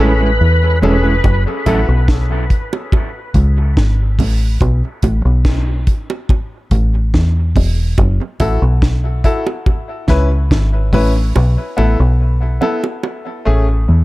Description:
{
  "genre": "dub reggae",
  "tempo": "71 BPM",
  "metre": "4/4",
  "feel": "straight",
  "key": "F# minor",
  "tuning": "A4 = 439 Hz",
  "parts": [
    { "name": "overdriven tonewheel organ", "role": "melody", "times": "0.0-0.8 s", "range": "B4", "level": "-22 LUFS", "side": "equal", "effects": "chorus vibrato, slow rotary speaker, dub echo" },
    { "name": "mellow electric guitar", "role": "accompaniment", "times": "0.0-1.8 s", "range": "F#3 to A4", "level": "-22 LUFS", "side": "right 2 dB", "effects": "dub echo" },
    { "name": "clear concert grand piano", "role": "stabs", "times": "0.0-1.9, 8.4-13.6 s", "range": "A3 to B4", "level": "-21 LUFS", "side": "left 2 dB", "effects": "dub echo" },
    { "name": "deep dub fingered electric bass", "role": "bass", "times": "0.0-14.0 s", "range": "E1 to E2", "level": "-13 LUFS", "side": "equal", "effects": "none" },
    { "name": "bongos", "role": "percussion", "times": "0.8-13.2 s", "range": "none", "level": "-25 LUFS", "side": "right 5 dB", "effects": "dub echo" },
    { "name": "deep reggae drum kit", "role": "drums", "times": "1.2-11.1 s", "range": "hi-hat, kick drum, snare drum", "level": "-15 LUFS", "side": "equal", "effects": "none" }
  ],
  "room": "light reverb, studio ambience",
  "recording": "echo-heavy mix",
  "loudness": "-12 LUFS",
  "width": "side -19 dB against mid",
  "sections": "0.0-14.0 A section",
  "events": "break 0.0-1.2, 1.2-14.0; part muted 11.3-14.0",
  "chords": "0.0 Amaj7; 1.2 F#m7; 2.9 C#5; 4.6 N.C.; 6.3 A5; 8.0 F#m7; 9.7 C#m7; 11.3 B7sus4; 13.0 Amaj7"
}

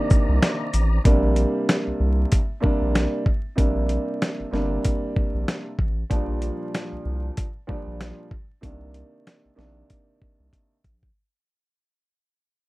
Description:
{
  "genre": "hip hop, boom-bap hip-hop",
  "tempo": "95 BPM",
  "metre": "4/4",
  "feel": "swing 59% on 16ths",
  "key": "unclear",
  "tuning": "A4 = 442 Hz",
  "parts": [
    { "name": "dark grand piano", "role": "accompaniment", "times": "0.0-10.8 s", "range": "Bb2 to D4", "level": "-26 LUFS", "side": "right 1 dB", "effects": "high-pass filter, low-pass filter" },
    { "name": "mellow tonewheel organ", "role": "sustained chords", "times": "0.0-1.0 s", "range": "Eb3 to Bb5", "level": "-32 LUFS", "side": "left 2 dB", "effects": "chorus vibrato, fast rotary speaker, high-pass filter, low-pass filter" },
    { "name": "dusty soul sampler-style drum kit", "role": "drums", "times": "0.1-11.1 s", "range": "hi-hat, kick drum, shaker, snare drum", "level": "-22 LUFS", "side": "equal", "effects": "none" },
    { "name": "round analog bass", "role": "bass", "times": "0.3-11.1 s", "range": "G1 to C2", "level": "-23 LUFS", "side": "equal", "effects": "none" }
  ],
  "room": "little or no reverb",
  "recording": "dark, warm production, vinyl crackle",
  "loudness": "-21 LUFS",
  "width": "side -20 dB against mid",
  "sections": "0.0-1.1 A section; 1.1-11.2 B section",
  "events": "fade-out 1.1-11.2; drum fill 10.5-11.2",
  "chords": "0.0 Cm9; 1.1 Bb69; 6.1 Gm7/Bb; 8.6 Cm9"
}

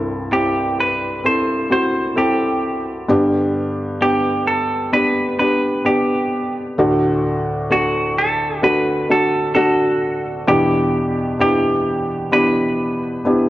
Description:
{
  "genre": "pop",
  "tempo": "65 BPM",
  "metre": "4/4",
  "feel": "straight",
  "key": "E minor",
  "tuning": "A4 = 444 Hz",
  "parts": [
    { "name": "felt-muted upright piano", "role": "accompaniment", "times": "0.0-13.5 s", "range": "C2 to A4", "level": "-17 LUFS", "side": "equal", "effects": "none" },
    { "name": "semi-hollow electric guitar", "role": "melody", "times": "0.3-13.5 s", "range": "F#4 to C5", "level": "-20 LUFS", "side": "right 1 dB", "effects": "none" }
  ],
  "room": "moderate lush hall reverb, RT60 1.9 s, small room reverb",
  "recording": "worn, warbling old tape, cassette tape, warbly pitch drift",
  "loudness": "-15 LUFS",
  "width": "side -15 dB against mid",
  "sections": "0.0-10.5 A section; 10.5-13.5 B section",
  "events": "none",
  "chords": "0.0 C6; 3.1 G; 6.8 D; 10.5 Em7"
}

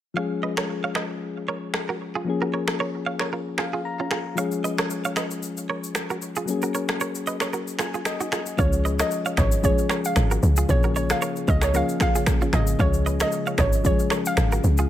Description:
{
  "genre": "afrobeats",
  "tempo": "114 BPM",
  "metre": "4/4",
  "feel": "swing 55% on 16ths",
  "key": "Db major",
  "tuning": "A4 = 441 Hz",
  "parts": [
    { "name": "soft electric-piano-like synth keys", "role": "accompaniment", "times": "0.1-14.9 s", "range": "F3 to Bb5", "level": "-28 LUFS", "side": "left 4 dB", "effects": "chorus" },
    { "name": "direct-recorded clean electric guitar", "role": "riff", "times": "0.2-14.9 s", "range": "Db4 to F5", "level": "-30 LUFS", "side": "right 5 dB", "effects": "tape echo" },
    { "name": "afro-pop drum kit", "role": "drums", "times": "0.6-14.9 s", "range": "finger snaps, kick drum, rim click, shaker", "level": "-26 LUFS", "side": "equal", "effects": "none" },
    { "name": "hollow square pluck", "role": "melody", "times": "8.6-14.4 s", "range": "Db5 to F5", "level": "-27 LUFS", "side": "right 2 dB", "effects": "chorus, tape echo" },
    { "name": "deep dark ambient pad", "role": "sustained chords", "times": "10.0-14.9 s", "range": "Db3 to Ab4", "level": "-34 LUFS", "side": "right 2 dB", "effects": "chorus, built-in reverb, tremolo" },
    { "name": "woody log drum bass", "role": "bass", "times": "8.6-14.9 s", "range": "Ab1 to Db2", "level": "-21 LUFS", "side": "equal", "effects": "none" }
  ],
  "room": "light reverb",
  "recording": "none",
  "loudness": "-21 LUFS",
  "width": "side -12 dB against mid",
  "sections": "0.2-8.6 A section; 8.6-14.9 B section",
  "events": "synth keys fill 3.3-4.4, 7.5-8.6; kick muted 6.5-8.6",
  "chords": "0.2 Db; 2.3 Bbm7; 4.4 Db; 6.5 Gbadd9; 8.6 Db; 10.7 Bbm7; 12.8 Db"
}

